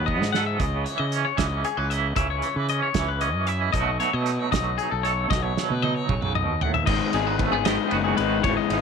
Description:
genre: math rock and midwest emo.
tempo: 77 BPM (dotted quarters).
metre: 6/8.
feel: straight.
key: unclear.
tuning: A4 = 441 Hz.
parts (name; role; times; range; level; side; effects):
twangy electric guitar; accompaniment; 0.0-8.8 s; G#2 to A4; -28 LUFS; right 16 dB; tremolo.
twangy electric guitar; arpeggios; 0.0-8.8 s; G#4 to F#5; -27 LUFS; left 15 dB; none.
fuzz fingered electric bass; bass; 0.0-8.8 s; F#1 to C#3; -27 LUFS; right 1 dB; overdrive.
loose indie drum kit; drums; 0.1-8.8 s; crash cymbal, hi-hat, kick drum, ride cymbal, snare drum, toms; -28 LUFS; right 4 dB; none.
raw garage guitar; riff; 6.9-8.8 s; G#2 to E4; -24 LUFS; left 14 dB; overdrive.
room: light reverb, studio reverb.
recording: 1960s-style stereo with parts hard left and right.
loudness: -21 LUFS.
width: side -6 dB against mid.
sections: 0.0-6.9 A section; 6.9-8.8 B section.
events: drum fill 0.0-0.6, 5.3-6.9.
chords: 0.0 B7/D#; 0.6 C#m7; 3.7 B7; 6.9 G#m7.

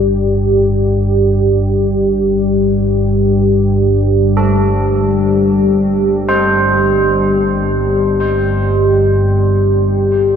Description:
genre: dark ambient drone.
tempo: free time.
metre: none.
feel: none.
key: unclear.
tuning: A4 = 440 Hz.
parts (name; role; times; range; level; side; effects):
dark analog pad; sustained chords; 0.0-10.4 s; G4 to D5; -15 LUFS; right 1 dB; chorus.
old church bells; arpeggios; 0.0-10.4 s; A3 to C5; -20 LUFS; right 2 dB; tape echo.
analog drone; drone; 0.0-10.4 s; G1 to G2; -14 LUFS; left 1 dB; chorus.
room: wet huge ambient reverb, RT60 8.9 s.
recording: dreamy mix soaked in reverb.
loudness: -11 LUFS.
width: side -8 dB against mid.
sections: 0.0-10.4 A section.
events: filter sweep on synth drone 0.0-10.4.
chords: 0.0 G5.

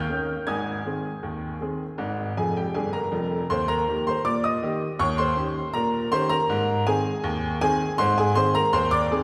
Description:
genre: ragtime piano.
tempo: 80 BPM.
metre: 2/4.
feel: straight.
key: Ab major, Eb major from 3.5 s.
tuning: A4 = 440 Hz.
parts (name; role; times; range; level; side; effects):
clear upright piano; solo; 0.0-9.2 s; F1 to Ab6; -25 LUFS; equal; none.
room: wet concert hall reverb, RT60 2.3 s.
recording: recorded in a church or concert hall.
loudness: -25 LUFS.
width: mono.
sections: 0.0-3.5 A section; 3.5-9.2 B section.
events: upright piano fill 2.4-3.5.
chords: 0.5 Ab; 3.5 Eb; 5.0 Eb7; 6.5 Ab.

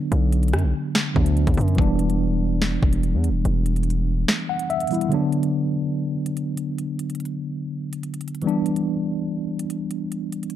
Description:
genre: hip hop, drill.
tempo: 144 BPM.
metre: 4/4.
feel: half-time.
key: B minor.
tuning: A4 = 440 Hz.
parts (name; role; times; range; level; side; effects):
tine electric piano; accompaniment; 0.0-10.6 s; D3 to F#5; -23 LUFS; equal; medium stereo tremolo, low-pass filter.
distorted 808-style bass; bass; 0.1-4.3 s; E1 to F#2; -21 LUFS; equal; distortion.
drill drum kit; drums; 0.1-10.6 s; finger snaps, hi-hat, kick drum, rim click, snare drum; -24 LUFS; equal; none.
room: digital ambience.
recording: dark, warm production.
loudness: -20 LUFS.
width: side -11 dB against mid.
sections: 0.0-5.1 A section; 5.1-10.6 B section.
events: kick muted 4.3-5.1.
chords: 0.0 Bm; 1.8 Em7; 5.1 Bm; 8.4 Em7.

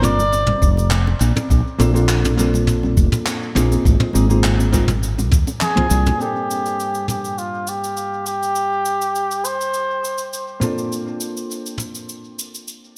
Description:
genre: sunset chillout.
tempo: 102 BPM.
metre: 4/4.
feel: straight.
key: G minor.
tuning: A4 = 443 Hz.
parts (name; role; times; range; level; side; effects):
trumpet with cup mute; melody; 0.0-0.9, 5.6-10.6 s; F4 to D5; -24 LUFS; equal; vintage 12-bit sampler grit, analog delay.
hollow-body jazz guitar; accompaniment; 0.0-13.0 s; G2 to C5; -27 LUFS; equal; low-pass filter, dub echo.
woody fretless electric bass; bass; 0.0-6.1 s; F1 to Eb2; -19 LUFS; equal; none.
jazz brush drum kit; drums; 0.0-12.8 s; cabasa, handclaps, toms; -26 LUFS; equal; tape echo.
congas; percussion; 0.0-6.2 s; none; -30 LUFS; equal; tape echo.
electronic kick drum; drums; 0.6-5.9 s; none; -19 LUFS; equal; none.
room: light reverb, small room reverb.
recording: echo-heavy mix.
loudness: -19 LUFS.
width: mono.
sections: 0.0-6.2 A section; 6.2-13.0 B section.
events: drum fill 5.6-6.2.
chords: 0.0 Gm11; 1.2 Bbmaj9; 3.9 Ab69; 6.2 Gmadd9; 10.6 Bbmaj9.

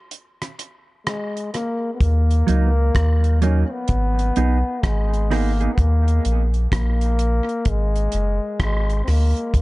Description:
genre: dub reggae.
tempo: 64 BPM.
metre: 4/4.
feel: swing 63% on 16ths.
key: Eb minor.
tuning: A4 = 440 Hz.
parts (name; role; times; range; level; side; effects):
damped 70s drum kit; drums; 0.1-9.6 s; hi-hat, kick drum, rim click; -24 LUFS; equal; none.
clear trombone; melody; 1.1-9.6 s; Ab3 to Db4; -25 LUFS; left 2 dB; tape echo.
soft dub sub bass; bass; 2.0-9.6 s; Gb1 to Eb2; -18 LUFS; equal; none.
mellow electric guitar; accompaniment; 2.5-5.7 s; Gb3 to Ab4; -25 LUFS; right 5 dB; tape echo.
room: light reverb, studio reverb.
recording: dark, warm production, nothing above 10.8 kHz.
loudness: -17 LUFS.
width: side -20 dB against mid.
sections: 0.0-2.0 A section; 2.0-9.6 B section.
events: break 0.0-2.0.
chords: 0.0 N.C.; 2.0 Ebm; 3.9 Abm; 5.8 Eb5; 7.7 Gbadd9.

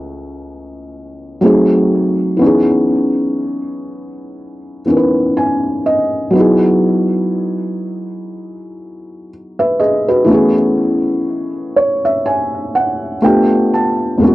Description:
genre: R&B.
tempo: 61 BPM.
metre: 4/4.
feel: swing 58% on 16ths.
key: E major.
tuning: A4 = 442 Hz.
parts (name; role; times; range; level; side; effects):
felt-muted upright piano; solo; 0.0-14.3 s; C#2 to A5; -13 LUFS; equal; analog delay.
room: moderate small room reverb, RT60 0.5 s.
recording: home recording on cassette.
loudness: -12 LUFS.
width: side -17 dB against mid.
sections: 0.0-6.3 A section; 6.3-14.3 B section.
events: felt piano fill 4.9-6.3, 11.3-14.2.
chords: 0.0 Amaj9/C#; 1.4 G#7b9; 2.4 C#m7; 6.3 Emaj7; 10.3 Amaj9/E; 13.2 G9.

